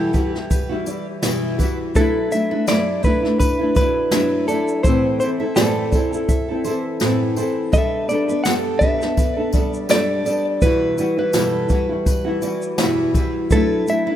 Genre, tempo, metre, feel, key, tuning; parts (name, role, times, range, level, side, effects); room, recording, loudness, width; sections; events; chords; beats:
acoustic pop; 83 BPM; 4/4; swing 55% on 16ths; A4 = 440 Hz
direct-recorded clean electric guitar; melody; 0.0-14.2 s; G4 to F#5; -22 LUFS; equal; spring reverb, ping-pong delay
nylon-string guitar; accompaniment; 0.0-14.2 s; E2 to A4; -20 LUFS; equal; double-tracked left and right
picked steel-string acoustic guitar; arpeggios; 0.0-14.2 s; A4 to E5; -31 LUFS; right 7 dB
jazz brush drum kit; drums; 0.1-14.1 s; kick drum, shaker, snare drum; -20 LUFS; equal
tambourine; percussion; 0.1-14.1 s; -36 LUFS; left 5 dB
light reverb, small room reverb; rough home demo mix; -17 LUFS; side -11 dB against mid
0.0-14.2 A section
0.0 Emadd9; 2.0 Dadd9/F#; 4.8 Am; 7.7 Gadd9; 10.6 Emadd9; 13.5 Dadd9/F#
0.51 1.23 | 1.95 2.68 3.40 4.12 | 4.84 5.57 6.29 7.01 | 7.74 8.46 9.18 9.90 | 10.62 11.35 12.07 12.79 | 13.51